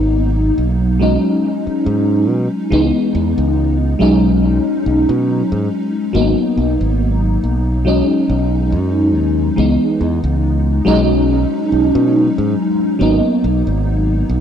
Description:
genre	vaporwave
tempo	70 BPM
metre	4/4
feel	swing 54% on 16ths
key	B major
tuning	A4 = 440 Hz
part	FM electric piano with soft pad layer	accompaniment	0.0-14.4 s	E3 to D#4	-15 LUFS	equal	phaser, ensemble chorus, tape echo
part	modern bright fingered electric bass	bass	0.0-14.4 s	G#1 to B2	-17 LUFS	equal	none
room	moderate plate reverb, RT60 2.3 s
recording	dark, warm production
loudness	-13 LUFS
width	side -8 dB against mid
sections	0.0-14.4 A section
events	none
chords	0.0 G#m9; 1.0 B69; 2.7 C#m9; 4.0 B69; 6.1 G#m9; 7.9 B69; 9.6 C#m9; 10.9 B69; 13.0 G#m9

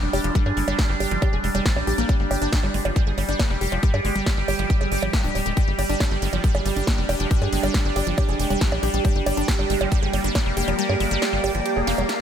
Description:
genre	psychedelic trance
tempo	138 BPM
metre	4/4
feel	straight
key	G phrygian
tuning	A4 = 440 Hz
part	overtone-sweeping drone	sustained chords	0.0-12.2 s	G3 to G4	-27 LUFS	right 1 dB	chorus, built-in reverb, sidechain pumping
part	wide unison pluck	riff	0.0-12.2 s	F3 to Ab4	-27 LUFS	moving between left 5 dB and right 6 dB	auto-pan, sidechain pumping, tape echo
part	tight sequencer bass	bass	0.0-12.0 s	D1 to G2	-25 LUFS	equal	tube saturation
part	warbly tape-like pad	texture	0.1-12.2 s	G4 to G5	-31 LUFS	right 3 dB	chorus, built-in reverb, sidechain pumping
part	big-room dance drum kit	drums	0.1-12.2 s	bongos, hi-hat, ride cymbal, snare drum	-29 LUFS	right 2 dB	none
part	electronic kick drum	drums	0.4-10.4 s	none	-21 LUFS	equal	none
room	light reverb, digital ambience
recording	none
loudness	-19 LUFS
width	side -9 dB against mid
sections	0.0-12.2 A section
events	kick drops out 10.8-12.2; drum fill 11.9-12.2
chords	0.0 G5

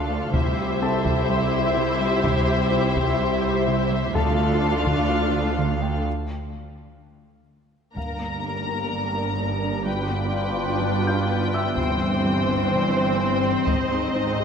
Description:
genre	cinematic, hybrid orchestral and electronic film score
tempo	126 BPM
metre	4/4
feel	straight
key	G dorian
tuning	A4 = 440 Hz
part	warm symphonic violin section	second line	0.0-14.4 s	A4 to Bb5	-26 LUFS	left 5 dB	none
part	warm symphonic viola section	accompaniment	0.0-14.4 s	E3 to G4	-28 LUFS	right 2 dB	low-pass filter
part	phased analog pad	sustained chords	0.0-14.4 s	E3 to F5	-28 LUFS	left 1 dB	phaser, chorus, low-pass filter
part	clear symphonic double bass section	bass	0.0-14.4 s	G1 to D2	-30 LUFS	right 3 dB	none
part	warm symphonic cello section	bass	0.0-14.4 s	C2 to Ab2	-29 LUFS	right 3 dB	none
part	warm grand piano	texture	0.0-13.7 s	A4 to G6	-34 LUFS	left 2 dB	ping-pong delay
part	soft round pluck	arpeggios	0.1-14.4 s	C3 to Ab4	-32 LUFS	right 1 dB	none
part	taiko ensemble	drums	0.3-8.9, 11.8-14.1 s	none	-30 LUFS	left 1 dB	none
room	wet concert hall reverb, RT60 2.3 s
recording	none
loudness	-20 LUFS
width	side -6 dB against mid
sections	0.0-8.0 A section; 8.0-14.4 B section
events	break 6.1-8.0; drum fill 7.2-8.0; filter sweep 8.0-14.4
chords	0.3 C; 4.2 Dm; 6.1 N.C.; 8.0 Gm; 9.9 G7; 11.8 C/G; 13.7 Ab

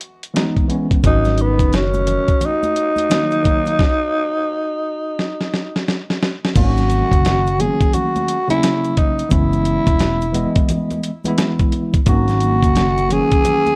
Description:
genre	hip hop, jazz-hop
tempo	87 BPM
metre	4/4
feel	swing 63% on 16ths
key	G# minor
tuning	A4 = 440 Hz
part	dusty soul sampler-style drum kit	drums	0.0-13.8 s	crash cymbal, hi-hat, kick drum, snare drum	-20 LUFS	equal	none
part	tine electric piano	accompaniment	0.3-13.8 s	C#3 to D#5	-24 LUFS	equal	overdrive
part	vibraphone with soft mallets	second line	1.0-5.9, 12.1-13.8 s	A#3 to F#4	-28 LUFS	equal	none
part	upright bass	bass	1.0-2.1, 6.6-13.2 s	E1 to G#1	-21 LUFS	equal	none
part	tube shaker and congas	percussion	1.0-13.8 s	none	-32 LUFS	equal	none
part	growling tenor saxophone	melody	1.1-13.8 s	B3 to G#4	-21 LUFS	equal	none
room	studio ambience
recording	dry, close 1970s-style studio recording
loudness	-17 LUFS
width	mono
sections	0.0-6.6 A section; 6.6-13.8 B section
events	stop 3.8-6.6; drum fill 5.2-6.6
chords	0.0 F#9sus4 (rootless); 1.0 G#9sus4 (rootless); 6.6 G#9sus4; 9.3 F#9sus4; 12.1 G#9sus4

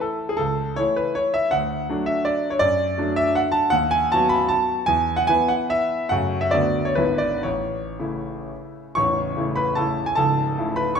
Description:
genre	classical, romantic triple-time dance for piano with dotted rhythms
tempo	107-172 BPM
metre	3/4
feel	rubato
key	A major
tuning	A4 = 440 Hz
part	clear grand piano	solo	0.0-11.0 s	A0 to C#6	-19 LUFS	equal	none
room	moderate recital hall reverb, RT60 1.7 s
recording	minimal, uncompressed stereo recording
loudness	-19 LUFS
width	side -6 dB against mid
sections	0.0-9.0 A section; 9.0-11.0 A section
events	none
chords	0.4 A/C#; 1.5 D; 2.6 D/F#; 3.7 B7/D#; 4.9 E5; 6.1 F#m; 6.5 Bm/D; 7.0 E7/G#; 7.5 A; 10.2 A/C#

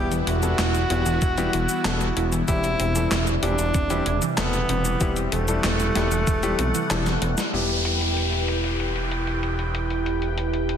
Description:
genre	synthwave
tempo	95 BPM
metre	4/4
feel	straight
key	E minor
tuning	A4 = 440 Hz
part	clear tenor saxophone	melody	0.0-7.4 s	A3 to G4	-27 LUFS	equal	digital delay
part	phased analog pad	sustained chords	0.0-10.8 s	C3 to G5	-29 LUFS	right 1 dB	phaser, chorus, sidechain pumping
part	analog pluck	arpeggios	0.0-7.4 s	E3 to E4	-33 LUFS	right 4 dB	none
part	clear baby grand piano	stabs	0.0-10.8 s	G3 to A4	-30 LUFS	left 4 dB	low-pass filter, ping-pong delay
part	fat analog bass	bass	0.0-10.8 s	E1 to B1	-26 LUFS	equal	sidechain pumping
part	gated 80s digital drum machine	drums	0.1-10.8 s	handclaps, hi-hat, shaker, snare drum	-28 LUFS	left 1 dB	gated reverb, gated reverb snare, overdrive, low-pass filter on hats, low-pass filter on perc, low-pass filter on snare, low-pass filter on room
part	electronic kick drum	drums	1.2-6.4 s	none	-24 LUFS	equal	overdrive
part	downlifter	sound effects	7.5-10.8 s	none	-28 LUFS	equal	none
room	light reverb, digital ambience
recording	dense, heavily limited modern master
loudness	-20 LUFS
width	side -8 dB against mid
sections	0.0-7.5 A section; 7.5-10.8 B section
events	drum fill 6.9-7.5; band accent 7.4-7.7; filter sweep on drum 7.5-10.8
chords	0.0 Em; 2.5 C/E; 7.5 Em

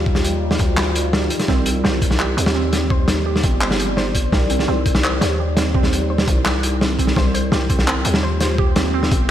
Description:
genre	half-time drum and bass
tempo	169 BPM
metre	4/4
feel	half-time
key	C minor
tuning	A4 = 441 Hz
part	deep dark ambient pad	sustained chords	0.0-9.3 s	G3 to D5	-25 LUFS	left 1 dB	chorus, built-in reverb, sidechain pumping
part	growling 808-style bass	bass	0.0-9.3 s	G1 to Eb2	-21 LUFS	equal	none
part	crunchy breakbeat drum kit	drums	0.1-9.2 s	handclaps, hi-hat, snare drum	-20 LUFS	equal	gated reverb
part	electronic kick drum	drums	0.1-9.2 s	none	-19 LUFS	equal	none
part	warbly dusty pluck	arpeggios	1.5-9.3 s	C4 to C5	-25 LUFS	right 5 dB	chorus, vintage 12-bit sampler grit, digital delay
room	moderate lush hall reverb, RT60 1.9 s, small room ambience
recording	bright 1980s-style digital production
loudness	-16 LUFS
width	side -11 dB against mid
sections	0.0-9.3 A section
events	kick drops out 1.1-1.5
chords	0.0 Cm

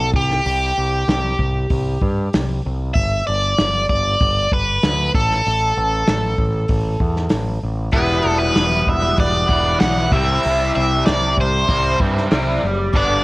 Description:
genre	indie rock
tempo	96 BPM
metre	4/4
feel	straight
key	unclear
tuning	A4 = 440 Hz
part	overdriven electric guitar	melody	0.0-13.2 s	G4 to F#5	-19 LUFS	equal	digital delay
part	growling picked electric bass	bass	0.0-13.2 s	E1 to G2	-21 LUFS	equal	overdrive
part	unplugged drum kit	drums	0.1-13.1 s	hi-hat, kick drum, snare drum	-21 LUFS	equal	none
part	overdriven electric guitar	riff	7.9-13.2 s	G2 to E4	-22 LUFS	right 3 dB	ensemble chorus
part	overdriven semi-hollow guitar	riff	7.9-13.2 s	G2 to E4	-23 LUFS	left 3 dB	phaser
room	little or no reverb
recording	worn, warbling old tape, cassette tape, warbly pitch drift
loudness	-15 LUFS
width	side -21 dB against mid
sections	0.0-13.2 A section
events	none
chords	0.1 C5; 3.0 G; 5.1 A5; 8.0 Em7; 10.1 C

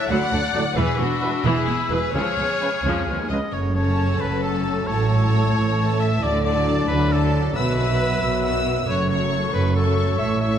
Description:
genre	cinematic, heroic adventure film score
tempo	90 BPM (dotted quarters)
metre	6/8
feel	straight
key	unclear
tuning	A4 = 440 Hz
part	warm symphonic violin section	melody	0.0-10.6 s	D4 to E6	-30 LUFS	left 4 dB	none
part	clear clarinet	second line	0.0-3.3 s	F#4 to F#5	-30 LUFS	left 2 dB	none
part	clear oboe	second line	0.0-10.6 s	A4 to B5	-29 LUFS	equal	none
part	hollow concert flute	second line	0.0-10.6 s	A4 to F#6	-31 LUFS	left 2 dB	none
part	rich symphonic violin section	second line	0.0-10.6 s	F#4 to F#5	-31 LUFS	left 3 dB	none
part	warm symphonic viola section	accompaniment	0.1-10.6 s	C#3 to B4	-29 LUFS	right 1 dB	none
part	rich symphonic double bass section	bass	0.1-10.6 s	E1 to D2	-25 LUFS	right 2 dB	none
part	warm symphonic cello section	bass	0.1-10.6 s	C#2 to D3	-25 LUFS	right 2 dB	none
part	mellow French horn section	sustained chords	0.5-10.6 s	G#3 to A4	-30 LUFS	left 6 dB	none
part	warm trombone section	sustained chords	0.6-10.6 s	F#2 to F#3	-32 LUFS	right 3 dB	none
part	dark trumpet section	stabs	0.6-10.6 s	A4 to E5	-30 LUFS	equal	none
room	wet scoring stage reverb, RT60 1.6 s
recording	none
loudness	-18 LUFS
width	side -9 dB against mid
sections	0.0-3.5 A section; 3.5-10.6 B section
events	none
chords	0.0 D; 0.8 E; 2.1 C#7; 3.5 F#m; 4.9 A; 6.2 D; 7.5 Bsus4; 8.9 F#m

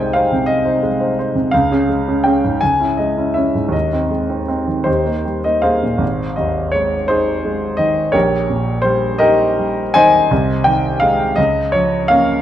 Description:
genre	classical, romantic character piece for solo piano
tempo	52-60 BPM (dotted quarters)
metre	6/8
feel	rubato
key	Ab major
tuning	A4 = 442 Hz
part	clear concert grand piano	solo	0.0-12.4 s	Ab1 to Ab5	-14 LUFS	equal	none
room	moderate recital hall reverb, RT60 1.7 s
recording	dark, warm production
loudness	-14 LUFS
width	side -11 dB against mid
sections	0.0-6.0 A section; 6.0-12.4 B section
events	none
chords	0.0 Ab/C; 1.5 Db; 2.6 Dbm; 3.7 Ab/Eb; 4.9 Eb; 6.0 Ab; 8.1 Eb7/Bb; 10.3 Ab/C; 11.4 Bbm/Db

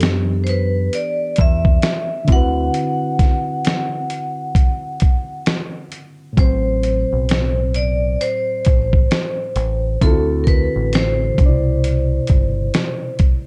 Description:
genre	lo-fi hip hop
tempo	66 BPM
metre	4/4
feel	swing 64% on 16ths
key	A dorian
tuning	A4 = 441 Hz
part	bright reed electric piano	accompaniment	0.0-13.5 s	A2 to D5	-27 LUFS	equal	cassette tape, low-pass filter
part	deep dub picked electric bass	bass	0.0-12.7 s	G1 to F#2	-22 LUFS	equal	none
part	dusty soul sampler-style drum kit	drums	0.0-13.5 s	hi-hat, kick drum, snare drum	-18 LUFS	equal	none
part	vibraphone with hard mallets	melody	0.4-13.2 s	A4 to F#5	-25 LUFS	equal	low-pass filter, plate reverb
room	light reverb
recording	dark, warm production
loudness	-18 LUFS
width	mono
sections	0.0-6.4 A section; 6.4-13.5 B section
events	break 2.7-6.4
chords	0.0 Em7; 2.3 D13; 6.4 Am69; 10.0 D9; 11.4 Cmaj9

